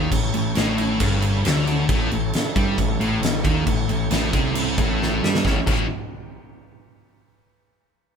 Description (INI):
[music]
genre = blues rock power trio and southern rock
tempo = 135 BPM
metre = 4/4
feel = straight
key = A mixolydian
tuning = A4 = 440 Hz
[part]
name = percussive tonewheel organ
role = sustained chords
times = 0.0-5.8 s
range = A3 to C#5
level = -33 LUFS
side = right 3 dB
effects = overdrive, fast rotary speaker
[part]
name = sludgy distorted guitar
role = riff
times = 0.0-5.8 s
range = G2 to E4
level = -22 LUFS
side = left 2 dB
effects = overdrive
[part]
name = growling picked electric bass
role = bass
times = 0.0-5.9 s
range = G1 to G2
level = -26 LUFS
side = right 1 dB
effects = overdrive
[part]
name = huge arena drum kit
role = drums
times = 0.1-5.8 s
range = crash cymbal, kick drum, snare drum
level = -23 LUFS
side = right 1 dB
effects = none
[sound]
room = moderate studio reverb, RT60 0.7 s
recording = band playing live in one room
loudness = -18 LUFS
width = side -7 dB against mid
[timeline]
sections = 0.0-5.4 A section; 5.4-7.2 B section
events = drum fill 5.0-5.4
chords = 0.0 A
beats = | 0.12 0.56 1.00 1.45 | 1.89 2.33 2.78 3.22 | 3.67 4.11 4.55 5.00 | 5.45